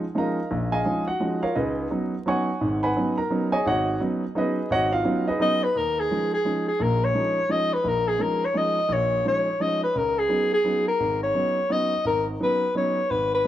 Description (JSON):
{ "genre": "jazz", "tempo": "172 BPM", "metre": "3/4", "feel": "swing 62% on 8ths", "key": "Eb minor", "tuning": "A4 = 440 Hz", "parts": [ { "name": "warm grand piano", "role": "accompaniment", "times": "0.0-13.5 s", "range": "Ab1 to Db6", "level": "-24 LUFS", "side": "right 1 dB", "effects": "none" }, { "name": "breathy soprano saxophone", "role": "melody", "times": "5.4-13.5 s", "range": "Ab4 to Eb5", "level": "-22 LUFS", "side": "left 1 dB", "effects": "none" } ], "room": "light reverb", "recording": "dark, warm production, vinyl crackle", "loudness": "-21 LUFS", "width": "side -12 dB against mid", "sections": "0.0-5.7 A section; 5.7-13.5 B section", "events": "none", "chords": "0.0 Eb9sus4; 1.5 Db9sus4; 5.7 Eb9sus4; 9.9 Db9sus4" }